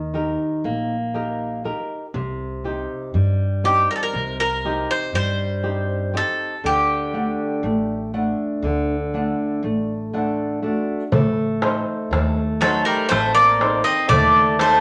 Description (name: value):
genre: greek folk, Greek bouzouki band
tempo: 120 BPM (eighths)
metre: 9/8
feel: straight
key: unclear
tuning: A4 = 439 Hz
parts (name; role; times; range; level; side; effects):
- Greek bouzouki; melody; 0.0-14.8 s; G4 to Eb5; -21 LUFS; equal; none
- flamenco guitar; accompaniment; 0.0-14.8 s; C3 to F#5; -26 LUFS; equal; none
- upright bass; bass; 0.0-14.8 s; A1 to G2; -28 LUFS; equal; none
- darbuka; percussion; 11.1-14.8 s; none; -25 LUFS; equal; none
- Greek bouzouki; second line; 12.6-14.8 s; F#3 to C4; -23 LUFS; equal; none
room: wet studio reverb, RT60 0.8 s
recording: none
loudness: -21 LUFS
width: mono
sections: 0.0-11.1 A section; 11.1-14.8 B section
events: none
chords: 0.0 Eb; 2.1 Cm; 6.6 D; 11.1 Adim